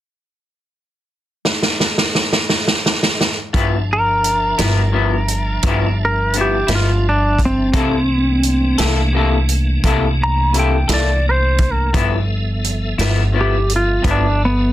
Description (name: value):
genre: slow blues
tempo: 57 BPM (dotted quarters)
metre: 12/8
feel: straight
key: unclear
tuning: A4 = 440 Hz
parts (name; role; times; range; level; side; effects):
- vintage drum kit; drums; 1.4-14.2 s; hi-hat, kick drum, snare drum; -18 LUFS; right 1 dB; none
- electric guitar through a small old amp; accompaniment; 3.5-14.3 s; G2 to A4; -20 LUFS; left 5 dB; harmonic tremolo
- tonewheel organ; sustained chords; 3.5-14.7 s; E3 to A5; -26 LUFS; right 1 dB; slow rotary speaker, overdrive, chorus vibrato
- upright bass; bass; 3.5-14.7 s; G1 to C2; -18 LUFS; equal; none
- clean lap steel guitar; melody; 3.9-14.7 s; B3 to Bb5; -18 LUFS; equal; none
room: light reverb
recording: dense, heavily limited modern master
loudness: -14 LUFS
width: side -13 dB against mid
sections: 0.0-3.5 A section; 3.5-14.7 B section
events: drum fill 1.4-3.5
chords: 0.0 N.C.; 3.5 G13; 7.7 C13; 11.9 G13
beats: 0.37 1.43 2.48 | 3.53 4.58 5.63 6.68 | 7.74 8.79 9.84 10.89 | 11.94 12.99 14.04